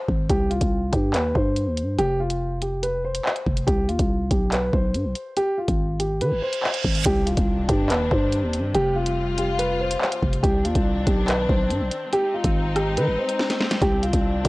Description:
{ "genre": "hip hop, drill", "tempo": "142 BPM", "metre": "4/4", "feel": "half-time", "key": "C harmonic minor", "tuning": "A4 = 440 Hz", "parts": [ { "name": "dark concert grand piano", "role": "melody", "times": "0.0-14.5 s", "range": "F4 to C5", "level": "-25 LUFS", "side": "equal", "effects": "low-pass filter" }, { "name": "growling 808-style bass", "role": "bass", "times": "0.1-14.5 s", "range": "F1 to Eb3", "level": "-24 LUFS", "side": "equal", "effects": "none" }, { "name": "drill drum kit", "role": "drums", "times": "0.1-14.5 s", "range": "handclaps, hi-hat, kick drum, rim click, snare drum", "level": "-24 LUFS", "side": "equal", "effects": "vintage 12-bit sampler grit" }, { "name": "reverse cymbal and impact", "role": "sound effects", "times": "6.4-8.7 s", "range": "none", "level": "-31 LUFS", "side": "right 2 dB", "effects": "none" }, { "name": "warm symphonic string section", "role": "sustained chords", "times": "7.1-14.5 s", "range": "C3 to F4", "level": "-30 LUFS", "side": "left 2 dB", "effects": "none" } ], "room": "digital ambience", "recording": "dry, gritty hardware recording, transformer saturation", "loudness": "-20 LUFS", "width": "side -21 dB against mid", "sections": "0.0-7.1 A section; 7.1-14.5 B section", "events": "break 0.0; reverse cymbal 6.4-7.1; impact 7.1-8.7; drum fill 13.4-13.8", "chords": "0.3 Cm; 2.0 F5; 3.7 C5; 5.4 Ab; 7.1 Cmadd9; 8.7 Fsus2; 10.4 Cmadd9; 12.1 Ab; 13.8 Cmadd9", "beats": "| 0.29 0.72 1.14 1.56 | 1.99 2.41 2.83 3.25 | 3.67 4.10 4.52 4.94 | 5.37 5.79 6.21 6.63 | 7.06 7.48 7.90 8.32 | 8.75 9.17 9.59 10.01 | 10.44 10.86 11.28 11.70 | 12.13 12.55 12.97 13.39 | 13.82 14.24" }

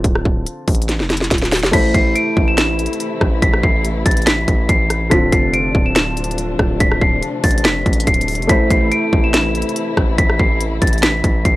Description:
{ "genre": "hip hop, trap", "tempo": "142 BPM", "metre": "4/4", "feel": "half-time", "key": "A minor", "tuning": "A4 = 440 Hz", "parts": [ { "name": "felt-muted upright piano", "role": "accompaniment", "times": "0.0-11.6 s", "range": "D3 to C5", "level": "-22 LUFS", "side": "equal", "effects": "none" }, { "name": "distorted 808-style bass", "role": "bass", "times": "0.0-11.6 s", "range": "D1 to A1", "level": "-20 LUFS", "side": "equal", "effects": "distortion" }, { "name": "trap drum kit", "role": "drums", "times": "0.0-11.6 s", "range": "crash cymbal, finger snaps, hi-hat, kick drum, rim click, snare drum", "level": "-16 LUFS", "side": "equal", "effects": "none" }, { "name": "celesta", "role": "melody", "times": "1.7-11.6 s", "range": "A6 to E7", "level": "-20 LUFS", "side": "equal", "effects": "none" }, { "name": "muted symphonic string section", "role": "sustained chords", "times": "1.7-11.6 s", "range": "C3 to E4", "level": "-25 LUFS", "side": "left 2 dB", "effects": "none" } ], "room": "small room ambience", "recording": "dry, gritty hardware recording, transformer saturation", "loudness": "-13 LUFS", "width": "side -17 dB against mid", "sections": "0.0-1.7 A section; 1.7-11.6 B section", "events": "break 0.0-1.7; drum fill 0.9-1.7", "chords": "0.0 Dm7; 1.7 Am; 5.1 Dm7; 8.5 Am", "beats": "| 0.04 0.47 0.89 1.31 | 1.73 2.15 2.58 3.00 | 3.42 3.85 4.27 4.69 | 5.11 5.54 5.96 6.38 | 6.80 7.23 7.65 8.07 | 8.49 8.92 9.34 9.76 | 10.18 10.61 11.03 11.45" }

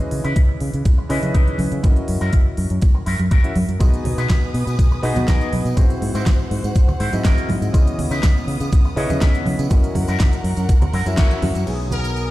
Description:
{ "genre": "nu-disco, nu disco", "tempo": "122 BPM", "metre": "4/4", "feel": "straight", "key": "B major", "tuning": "A4 = 440 Hz", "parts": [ { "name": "warm electric grand piano", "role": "accompaniment", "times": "0.0-12.3 s", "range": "E3 to E5", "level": "-26 LUFS", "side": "left 1 dB", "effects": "vintage 12-bit sampler grit, sidechain pumping, low-pass filter, ping-pong delay" }, { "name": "electric guitar with an envelope filter", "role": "riff", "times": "0.0-11.4 s", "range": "D#4 to C#5", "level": "-30 LUFS", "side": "left 2 dB", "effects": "wide subtle chorus, low-pass filter, ping-pong delay" }, { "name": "pop drum kit", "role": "drums", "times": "0.0-12.3 s", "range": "cabasa, crash cymbal, hi-hat, snare drum", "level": "-29 LUFS", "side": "equal", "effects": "none" }, { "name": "fingered electric bass", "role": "bass", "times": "0.1-12.3 s", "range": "F#1 to C#3", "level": "-22 LUFS", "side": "equal", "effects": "none" }, { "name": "electronic kick drum", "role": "drums", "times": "0.4-11.3 s", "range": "none", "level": "-15 LUFS", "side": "equal", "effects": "none" }, { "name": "congas and tambourine", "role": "percussion", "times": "1.2-12.3 s", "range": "none", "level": "-27 LUFS", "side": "right 2 dB", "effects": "none" }, { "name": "clear symphonic violin section", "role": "sustained chords", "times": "3.8-12.3 s", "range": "B3 to D#6", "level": "-32 LUFS", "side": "equal", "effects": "sidechain pumping, low-pass filter" }, { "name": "brilliant trumpet section", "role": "melody", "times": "11.9-12.3 s", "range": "A#4", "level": "-25 LUFS", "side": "left 1 dB", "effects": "none" } ], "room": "little or no reverb", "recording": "played on a big sound system in a bare room, stone room reverb", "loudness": "-16 LUFS", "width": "side -16 dB against mid", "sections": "0.0-11.7 A section", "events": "band accent 11.2", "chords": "0.0 C#m9; 1.8 F#7; 3.8 B6; 5.8 G#7b13; 7.7 C#m9; 9.7 F#7; 11.7 B6", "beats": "0.36 0.85 1.35 | 1.84 2.33 2.82 3.31 | 3.81 4.30 4.79 5.28 | 5.77 6.26 6.76 7.25 | 7.74 8.23 8.72 9.21 | 9.71 10.20 10.69 11.18 | 11.67 12.17" }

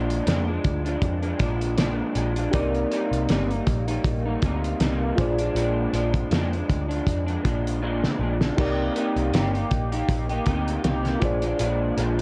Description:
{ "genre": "indie pop, bedroom pop", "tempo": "80 BPM", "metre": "4/4", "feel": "swing 55% on 16ths", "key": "unclear", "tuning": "A4 = 439 Hz", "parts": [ { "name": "electric guitar through a small old amp", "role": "accompaniment", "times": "0.0-12.2 s", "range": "Bb2 to G4", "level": "-29 LUFS", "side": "equal", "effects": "analog chorus, vibrato effect" }, { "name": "reed electric piano", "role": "accompaniment", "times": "0.0-12.2 s", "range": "D4 to D5", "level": "-33 LUFS", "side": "equal", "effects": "cassette tape" }, { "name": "vintage muted picked electric bass", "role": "bass", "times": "0.0-12.2 s", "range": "G1 to F2", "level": "-30 LUFS", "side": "equal", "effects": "none" }, { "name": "cloth-damped thuddy drum kit", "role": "drums", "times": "0.1-12.2 s", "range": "crash cymbal, hi-hat, kick drum, snare drum", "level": "-29 LUFS", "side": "equal", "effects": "none" } ], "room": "light reverb", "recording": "cassette tape", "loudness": "-24 LUFS", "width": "mono", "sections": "0.0-12.2 A section", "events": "drum fill 7.8-8.6", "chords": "0.0 Bb7; 2.5 Cm7; 5.2 Bb7; 8.6 Cm7; 11.2 Bb7", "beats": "0.28 1.03 1.79 | 2.54 3.30 4.05 4.80 | 5.56 6.31 7.07 7.82 | 8.58 9.33 10.09 10.84 | 11.60" }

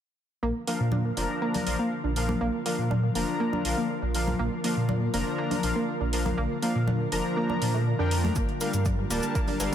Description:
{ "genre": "progressive house", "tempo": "121 BPM", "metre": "4/4", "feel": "straight", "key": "Bb major", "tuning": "A4 = 440 Hz", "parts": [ { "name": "airy breathy pad", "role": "sustained chords", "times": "0.4-9.7 s", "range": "D3 to Bb4", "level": "-33 LUFS", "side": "equal", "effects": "chorus, sidechain pumping" }, { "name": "analog pluck", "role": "arpeggios", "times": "0.4-9.7 s", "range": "A3 to D4", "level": "-32 LUFS", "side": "right 1 dB", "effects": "chorus, sidechain pumping, ping-pong delay" }, { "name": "dark detuned saw bass", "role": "bass", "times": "0.4-9.7 s", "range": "D1 to Bb2", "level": "-28 LUFS", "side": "equal", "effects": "sidechain pumping" }, { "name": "soft supersaw", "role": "stabs", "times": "0.7-9.7 s", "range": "F3 to Bb5", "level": "-31 LUFS", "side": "left 3 dB", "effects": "cassette tape, sidechain pumping, low-pass filter, ping-pong delay" }, { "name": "electronic hi-hat", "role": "drums", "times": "0.7-9.7 s", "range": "none", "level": "-36 LUFS", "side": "right 3 dB", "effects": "none" }, { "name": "congas and cowbell", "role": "percussion", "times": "0.9-9.7 s", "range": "none", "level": "-36 LUFS", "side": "left 3 dB", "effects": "sidechain pumping on perc" }, { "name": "electronic kick drum", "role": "drums", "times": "8.4-9.5 s", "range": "none", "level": "-28 LUFS", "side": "equal", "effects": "none" }, { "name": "cabasa", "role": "percussion", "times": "8.4-9.7 s", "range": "none", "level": "-37 LUFS", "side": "left 4 dB", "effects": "none" } ], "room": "light reverb, digital ambience", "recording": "none", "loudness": "-25 LUFS", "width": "side -10 dB against mid", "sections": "0.4-9.7 A section", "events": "filter sweep on detuned saw bass 0.4-9.7; filter sweep on synth pluck 0.4-9.7", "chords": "0.4 Bb; 8.4 Gm7", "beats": "| 0.43 0.92 1.42 1.91 | 2.41 2.91 3.40 3.90 | 4.39 4.89 5.38 5.88 | 6.38 6.87 7.37 7.87 | 8.36 8.86 9.35" }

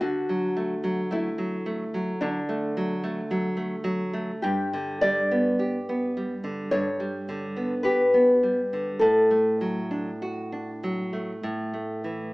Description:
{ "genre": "romantic duo for nylon-string guitar and classical guitar", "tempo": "49-56 BPM", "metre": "4/4", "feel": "rubato", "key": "D major", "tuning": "A4 = 442 Hz", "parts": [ { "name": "nylon-string guitar", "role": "melody", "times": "0.0-12.3 s", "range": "D4 to D5", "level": "-24 LUFS", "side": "left 1 dB", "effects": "none" }, { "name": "nylon-string guitar", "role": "accompaniment", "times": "0.0-12.3 s", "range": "G2 to G4", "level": "-27 LUFS", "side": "right 1 dB", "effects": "none" } ], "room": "light reverb", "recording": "band playing live in one room, small speaker sound", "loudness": "-24 LUFS", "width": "side -22 dB against mid", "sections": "0.0-12.3 A section", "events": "none", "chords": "0.0 D; 4.4 G; 9.0 D/A; 11.4 A5", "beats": "| 0.02 1.12 2.22 3.31 | 4.43 5.59 6.72 7.84 | 9.01 10.21 11.43" }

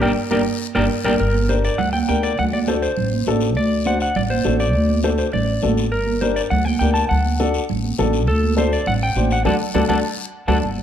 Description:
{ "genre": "latin, cumbia", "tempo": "203 BPM", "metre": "4/4", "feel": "straight", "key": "unclear", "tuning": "A4 = 439 Hz", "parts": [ { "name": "clean electric guitar", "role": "melody", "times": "0.0-10.6 s", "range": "A4 to A5", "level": "-22 LUFS", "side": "equal", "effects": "spring reverb, plate reverb" }, { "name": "dark upright piano", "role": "accompaniment", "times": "0.0-10.6 s", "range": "D4 to C5", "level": "-23 LUFS", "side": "left 6 dB", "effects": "none" }, { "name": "upright bass", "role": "bass", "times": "0.0-10.8 s", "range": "G1 to D2", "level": "-21 LUFS", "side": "equal", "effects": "none" }, { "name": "congas", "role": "percussion", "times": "0.0-10.8 s", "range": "none", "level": "-24 LUFS", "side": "right 8 dB", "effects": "none" }, { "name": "guiro", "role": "percussion", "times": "0.0-10.8 s", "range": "none", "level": "-34 LUFS", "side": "left 7 dB", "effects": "none" } ], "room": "light reverb", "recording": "dark, warm production", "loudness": "-17 LUFS", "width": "side -9 dB against mid", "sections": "0.0-1.2 A section; 1.2-10.6 B section", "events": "band accent 0.0-1.2, 9.5-10.6; drum fill 0.8-1.2, 9.5-10.6", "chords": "0.0 Gm; 2.4 D7; 5.9 Gm; 7.1 D", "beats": "| 0.02 0.31 0.61 0.90 | 1.20 1.49 1.79 2.08 | 2.38 2.67 2.97 3.27 | 3.56 3.86 4.15 4.45 | 4.74 5.04 5.33 5.63 | 5.92 6.22 6.51 6.80 | 7.10 7.39 7.69 7.98 | 8.28 8.57 8.87 9.16 | 9.45 9.75 10.04 10.34 | 10.63" }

